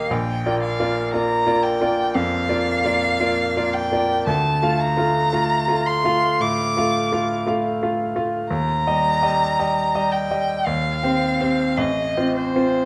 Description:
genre	classical, romantic duo for violin and grand piano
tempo	50-60 BPM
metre	4/4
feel	rubato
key	unclear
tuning	A4 = 438 Hz
part	rich violin	melody	0.0-12.9 s	C5 to D6	-24 LUFS	equal	none
part	bright baby grand piano	accompaniment	0.0-12.9 s	A1 to F5	-23 LUFS	equal	none
room	wet recital hall reverb, RT60 1.5 s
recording	dark, warm production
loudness	-21 LUFS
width	mono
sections	0.0-12.9 A section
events	none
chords	0.1 Bb; 4.3 Dm; 8.5 Eb; 10.7 Cm/Eb; 11.8 F7/A

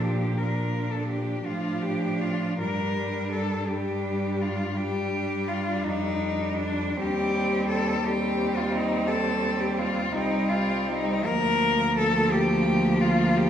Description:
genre	classical, lyrical piece for cello ensemble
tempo	56 BPM (dotted quarters)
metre	12/8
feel	rubato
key	Bb major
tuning	A4 = 441 Hz
part	rich cello	melody	0.0-13.5 s	D4 to Bb4	-27 LUFS	left 4 dB	none
part	rich cello	second line	0.0-13.5 s	Bb3 to D4	-31 LUFS	right 4 dB	none
part	rich cello	accompaniment	0.0-13.5 s	F3 to G3	-30 LUFS	equal	none
part	rich cello	bass	0.0-13.5 s	C2 to Bb2	-30 LUFS	right 1 dB	none
room	wet recital hall reverb, RT60 1.6 s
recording	recorded in a church or concert hall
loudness	-23 LUFS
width	side -9 dB against mid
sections	0.0-13.5 A section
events	none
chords	0.0 Bb; 2.6 G5; 7.0 Cm/Eb; 11.3 Bb/D

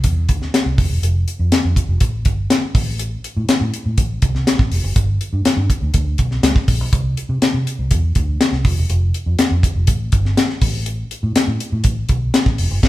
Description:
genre	polished 1980s jazz-funk pop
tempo	122 BPM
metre	4/4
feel	straight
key	unclear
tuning	A4 = 441 Hz
part	vintage muted fingered electric bass	bass	0.0-12.9 s	E1 to C3	-18 LUFS	equal	none
part	tight funk drum kit	drums	0.0-12.9 s	crash cymbal, hi-hat, kick drum, snare drum	-16 LUFS	equal	none
room	moderate stone room reverb, RT60 1.2 s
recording	band playing live in one room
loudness	-15 LUFS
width	side -16 dB against mid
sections	0.0-12.9 A section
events	none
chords	none

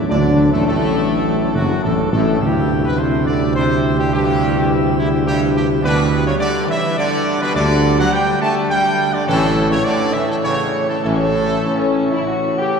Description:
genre	classical, ceremonial fanfare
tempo	104 BPM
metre	3/4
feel	straight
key	D major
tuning	A4 = 440 Hz
part	chamber organ, principal chorus	sustained chords	0.0-12.8 s	A2 to E5	-23 LUFS	left 1 dB	none
part	dark trumpet section	melody	0.1-12.5 s	E4 to A5	-21 LUFS	equal	none
part	bright trombone section	sustained chords	0.1-12.5 s	E2 to A3	-23 LUFS	right 2 dB	none
part	mellow French horn section	sustained chords	0.1-12.8 s	E3 to G4	-22 LUFS	left 4 dB	none
part	dark tuba	bass	0.1-11.6 s	F#1 to D2	-19 LUFS	right 2 dB	none
room	wet cathedral reverb, RT60 6.4 s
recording	heard from further back in the room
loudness	-14 LUFS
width	side -6 dB against mid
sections	0.0-12.8 A section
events	none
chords	0.0 D/A; 2.4 C/D; 5.8 G5/D; 9.3 A

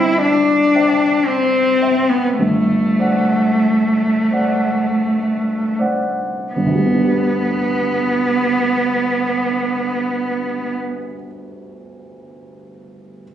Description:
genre	classical, romantic duo for cello and grand piano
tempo	38-59 BPM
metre	3/4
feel	rubato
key	G major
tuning	A4 = 440 Hz
part	rich cello	melody	0.0-10.7 s	A3 to E4	-16 LUFS	left 1 dB	none
part	dark baby grand piano	accompaniment	0.0-13.2 s	G1 to G5	-22 LUFS	right 2 dB	none
room	moderate recital hall reverb, RT60 1.5 s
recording	recorded on a phone in the room, studio reverb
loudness	-15 LUFS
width	side -10 dB against mid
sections	0.0-6.6 A section; 6.6-11.0 B section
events	slowing down 0.0-6.6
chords	0.0 C/G; 2.4 D7/G; 6.6 G

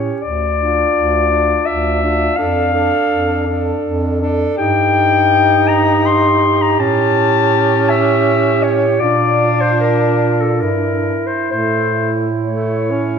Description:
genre	classical, lyrical piece for single-reed quartet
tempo	64-85 BPM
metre	3/4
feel	rubato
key	D minor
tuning	A4 = 444 Hz
part	warm clarinet	melody	0.0-13.2 s	A4 to C6	-16 LUFS	left 6 dB	none
part	warm alto saxophone	second line	0.0-13.2 s	E4 to A4	-20 LUFS	right 7 dB	none
part	mellow tenor saxophone	accompaniment	0.0-13.2 s	A3 to Eb4	-19 LUFS	left 1 dB	none
part	mellow bass clarinet	bass	0.0-13.2 s	D2 to Bb2	-20 LUFS	right 2 dB	none
room	moderate concert hall reverb, RT60 2.2 s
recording	minimal, uncompressed stereo recording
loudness	-12 LUFS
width	side -6 dB against mid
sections	0.0-13.2 A section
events	none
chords	0.2 Dm; 2.4 Dm/F; 4.6 Eb/G; 6.8 A7; 9.0 Bb; 10.6 Em7b5/G; 11.5 A

